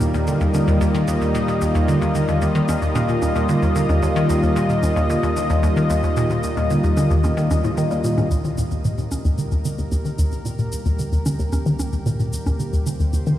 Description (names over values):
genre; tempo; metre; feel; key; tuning
ambient, sequencer-driven space music; 112 BPM; 4/4; straight; Eb major; A4 = 439 Hz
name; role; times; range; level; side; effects
lush unison pad; sustained chords; 0.0-13.4 s; Eb3 to Eb5; -22 LUFS; equal; chorus
hollow square pluck; riff; 0.0-13.4 s; Eb2 to G3; -20 LUFS; equal; chorus, tape echo
cabasa and bongos; percussion; 0.0-13.4 s; none; -34 LUFS; right 1 dB; overdrive, tape echo
room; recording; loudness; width
wet huge ambient reverb, RT60 7.5 s; played on a big sound system in a bare room, stone room reverb; -18 LUFS; side -12 dB against mid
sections
0.0-8.3 A section; 8.3-13.4 B section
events
filter sweep on synth arpeggio sound 8.3-13.4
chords
0.0 Eb